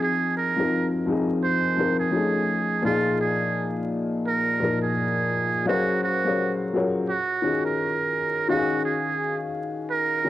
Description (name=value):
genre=hip hop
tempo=85 BPM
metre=4/4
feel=swing 58% on 16ths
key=Eb dorian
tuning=A4 = 440 Hz
part: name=trumpet with metal mute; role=melody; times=0.0-10.3 s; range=F4 to C5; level=-25 LUFS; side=right 4 dB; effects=low-pass filter, cassette tape
part: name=felt-muted upright piano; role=accompaniment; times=0.0-10.3 s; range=Bb2 to F5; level=-24 LUFS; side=left 2 dB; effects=low-pass filter, cassette tape
room=light reverb, small room reverb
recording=home recording on cassette, vinyl crackle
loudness=-22 LUFS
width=side -14 dB against mid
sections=0.0-8.5 A section; 8.5-10.3 B section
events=none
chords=0.0 Fm7; 2.1 F7alt; 2.8 Bb7sus4; 5.7 Gbmaj9#11; 7.1 Ebm11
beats=| 0.02 0.72 1.43 2.13 | 2.84 3.55 4.25 4.96 | 5.66 6.37 7.08 7.78 | 8.49 9.19 9.90